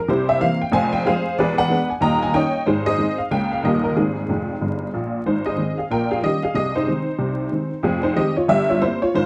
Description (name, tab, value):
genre	jazz, stride piano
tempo	186 BPM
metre	4/4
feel	swing 61% on 8ths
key	Ab major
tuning	A4 = 440 Hz
part	honky-tonk upright piano	solo	0.0-9.3 s	Eb1 to Bb5	-20 LUFS	equal	none
room	moderate studio reverb, RT60 0.8 s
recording	dark, warm production, vinyl crackle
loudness	-21 LUFS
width	mono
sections	0.0-5.3 A section; 5.3-9.3 A section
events	honky-tonk piano fill 4.3-5.3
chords	0.1 C7; 0.7 Fm; 1.4 E7; 2.0 Eb7; 2.7 Ab; 3.3 Db6; 3.6 Eb; 4.0 Ab; 5.9 Eb7/Bb; 6.5 Ab/C; 7.8 Fm7; 8.5 C7/G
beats	| 0.09 0.41 0.73 1.05 | 1.38 1.70 2.02 2.35 | 2.67 2.99 3.32 3.64 | 3.96 4.29 4.61 4.93 | 5.25 5.58 5.90 6.22 | 6.55 6.87 7.19 7.51 | 7.84 8.16 8.48 8.81 | 9.13